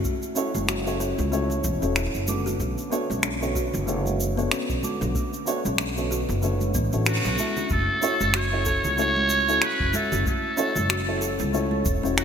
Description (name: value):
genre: sunset chillout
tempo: 94 BPM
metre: 4/4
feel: swing 57% on 16ths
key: unclear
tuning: A4 = 437 Hz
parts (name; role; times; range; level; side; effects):
- dark grand piano; accompaniment; 0.0-12.2 s; D3 to D6; -28 LUFS; equal; auto-pan, digital delay
- kalimba; arpeggios; 0.0-12.2 s; A3 to A4; -32 LUFS; left 2 dB; digital delay
- electronic kick drum; drums; 0.0-12.0 s; none; -30 LUFS; equal; none
- shaker and finger snaps; drums; 0.0-12.2 s; none; -29 LUFS; equal; none
- upright bass; bass; 0.5-12.2 s; E1 to C#2; -28 LUFS; equal; none
- congas; percussion; 0.5-11.8 s; none; -36 LUFS; right 3 dB; none
- trumpet with metal mute; melody; 7.1-12.2 s; F#4 to C#5; -25 LUFS; right 1 dB; ping-pong delay
room: moderate lush hall reverb, RT60 2.7 s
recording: bright 1980s-style digital production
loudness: -22 LUFS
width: side -7 dB against mid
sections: 0.0-7.7 A section; 7.7-12.2 B section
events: band accent 7.1-7.4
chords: 0.0 F#m7; 2.6 Bm9; 7.7 F#m7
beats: | 0.04 0.68 1.32 1.96 | 2.60 3.23 3.87 4.51 | 5.15 5.79 6.43 7.07 | 7.70 8.34 8.98 9.62 | 10.26 10.89 11.53 12.17